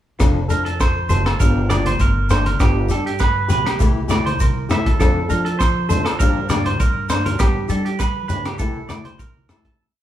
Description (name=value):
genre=highlife guitar band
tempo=100 BPM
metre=4/4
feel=straight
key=F major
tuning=A4 = 438 Hz
part: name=flamenco guitar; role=accompaniment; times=0.2-9.7 s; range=E3 to A4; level=-25 LUFS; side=left 4 dB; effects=none
part: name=clean electric guitar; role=arpeggios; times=0.2-9.8 s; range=G4 to E5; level=-23 LUFS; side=right 5 dB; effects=none
part: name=upright bass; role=bass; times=0.2-9.7 s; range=F1 to G3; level=-22 LUFS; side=equal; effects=none
part: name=crunchy breakbeat drum kit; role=drums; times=0.2-9.8 s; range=hi-hat, kick drum, rim click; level=-20 LUFS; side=equal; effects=none
part: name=agogo bells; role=percussion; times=0.2-9.7 s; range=none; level=-32 LUFS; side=left 5 dB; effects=none
part: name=shekere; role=percussion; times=0.2-9.6 s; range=none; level=-27 LUFS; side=left 2 dB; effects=none
part: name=congas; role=percussion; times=1.1-9.8 s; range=none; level=-26 LUFS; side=left 1 dB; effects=none
room=light reverb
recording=band playing live in one room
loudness=-16 LUFS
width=side -12 dB against mid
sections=0.2-9.8 groove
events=fade-out 7.4-9.8; drum fill 9.3-9.8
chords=0.2 F6; 1.4 Gm7; 2.6 G; 3.8 C6; 5.0 F6; 6.2 Gm7; 7.4 G; 8.6 C6